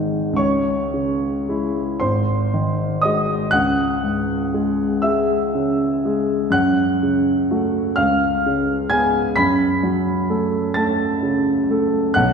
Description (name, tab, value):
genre	classical, romantic nocturne for solo piano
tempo	32-45 BPM (dotted quarters)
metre	6/8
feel	rubato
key	C# minor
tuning	A4 = 440 Hz
part	warm grand piano	solo	0.0-12.3 s	G#1 to B6	-17 LUFS	equal	none
room	wet concert hall reverb, RT60 2.3 s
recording	heard from further back in the room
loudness	-17 LUFS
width	side -6 dB against mid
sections	0.4-12.3 A section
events	none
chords	0.4 C#m; 2.0 G#7; 3.5 C#m; 6.5 F#m; 8.0 C#7; 9.4 F#m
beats	| 0.38 2.01 | 3.54 5.04 | 6.54 7.97 | 9.37 10.76 | 12.17